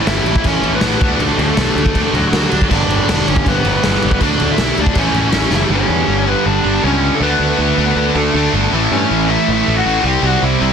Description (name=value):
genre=punk rock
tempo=160 BPM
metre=4/4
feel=straight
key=unclear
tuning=A4 = 440 Hz
part: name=bluesy overdriven lead guitar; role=melody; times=0.0-10.7 s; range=F#3 to G5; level=-19 LUFS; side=left 1 dB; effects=distortion
part: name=cranked stack guitar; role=riff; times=0.0-10.7 s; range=G2 to D4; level=-20 LUFS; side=right 14 dB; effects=overdrive
part: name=distorted electric guitar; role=riff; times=0.0-10.7 s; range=G2 to D4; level=-21 LUFS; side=left 12 dB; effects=overdrive
part: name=distorted electric guitar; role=riff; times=0.0-10.7 s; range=G2 to D4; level=-22 LUFS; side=equal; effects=none
part: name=fuzz picked electric bass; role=bass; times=0.1-10.7 s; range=E1 to G2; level=-19 LUFS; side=equal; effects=overdrive
part: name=raw garage drum kit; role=drums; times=0.1-5.6 s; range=crash cymbal, kick drum, snare drum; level=-17 LUFS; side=equal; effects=none
room=little or no reverb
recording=dense, heavily limited modern master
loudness=-12 LUFS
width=side -7 dB against mid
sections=0.0-5.7 A section; 5.7-10.7 B section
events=drum fill 5.5; half time 5.7-10.7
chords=0.0 A; 1.0 D; 2.7 G; 4.2 D5; 5.0 A; 5.7 G; 7.2 D5; 8.7 A; 10.0 C